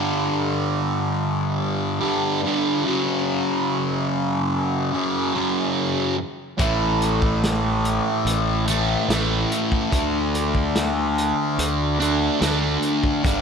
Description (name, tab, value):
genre	psychedelic rock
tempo	72 BPM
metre	4/4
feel	straight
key	unclear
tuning	A4 = 440 Hz
part	fuzz guitar	riff	0.0-13.4 s	F#2 to D4	-20 LUFS	equal	distortion, phaser
part	fuzz fingered electric bass	bass	6.6-13.4 s	G1 to D2	-25 LUFS	equal	overdrive
part	crunchy breakbeat drum kit	drums	6.6-13.4 s	hi-hat, kick drum, snare drum	-25 LUFS	equal	none
room	moderate echo chamber reverb, RT60 2.2 s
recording	none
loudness	-19 LUFS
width	side -6 dB against mid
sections	0.0-13.4 A section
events	none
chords	0.0 G5; 2.8 F#5; 6.6 A5; 9.9 D5